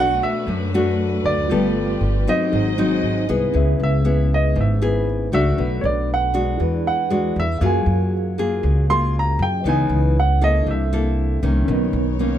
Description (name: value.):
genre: bossa nova.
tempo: 118 BPM.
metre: 4/4.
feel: straight.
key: C# minor from 3.5 s.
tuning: A4 = 440 Hz.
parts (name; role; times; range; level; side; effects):
clear baby grand piano; melody; 0.0-11.7 s; C#5 to B#5; -23 LUFS; right 2 dB; none.
nylon-string guitar; accompaniment; 0.0-12.4 s; F#2 to A4; -22 LUFS; left 2 dB; none.
tine electric piano; accompaniment; 0.0-12.4 s; B3 to G5; -28 LUFS; right 1 dB; medium stereo tremolo.
warm studio string section; sustained chords; 0.0-3.5, 11.7-12.4 s; A3 to D#5; -29 LUFS; equal; none.
upright bass; bass; 0.0-12.4 s; G1 to F#2; -20 LUFS; equal; none.
room: little or no reverb.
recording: none.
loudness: -17 LUFS.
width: side -10 dB against mid.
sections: 0.0-3.5 A section; 3.5-12.4 B section.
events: grand piano solo 3.5-12.4.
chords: 0.0 Bm7; 1.5 G9; 2.5 G#7; 3.5 C#m7; 5.6 Bm7; 6.6 E9; 7.6 F#maj9; 9.6 C#m9; 10.7 C13; 11.7 Bmaj9.